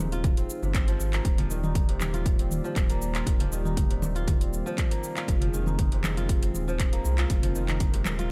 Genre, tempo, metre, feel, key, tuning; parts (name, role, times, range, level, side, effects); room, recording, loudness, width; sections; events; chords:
afro house; 119 BPM; 4/4; straight; F dorian; A4 = 440 Hz
warm analog pad; sustained chords; 0.0-8.3 s; Eb3 to D5; -39 LUFS; equal; chorus, sidechain pumping
kora; arpeggios; 0.0-8.3 s; C3 to F4; -37 LUFS; equal; sidechain pumping, digital delay
round analog bass; bass; 0.0-8.3 s; Eb1 to C2; -32 LUFS; equal; sidechain pumping
afro-pop drum kit; drums; 0.1-8.3 s; handclaps, hi-hat, shaker, toms; -36 LUFS; equal
congas; percussion; 0.1-8.3 s; -38 LUFS; equal
electronic kick drum; drums; 0.2-7.9 s; -28 LUFS; equal
little or no reverb; -26 LUFS; mono
0.0-8.3 A section
0.0 Fm7; 1.2 Ebmaj7; 5.3 Fm7